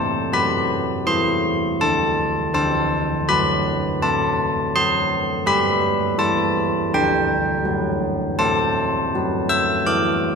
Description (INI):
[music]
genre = classical, tune for church bells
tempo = 82 BPM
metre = 4/4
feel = straight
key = unclear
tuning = A4 = 442 Hz
[part]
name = carillon bells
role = solo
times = 0.0-10.4 s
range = D3 to E6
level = -18 LUFS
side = equal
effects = none
[sound]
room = wet concert hall reverb, RT60 2.4 s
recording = none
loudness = -18 LUFS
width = side -5 dB against mid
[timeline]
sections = 0.0-10.4 A section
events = none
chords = 0.0 Am; 2.5 D7; 5.4 G; 8.4 Am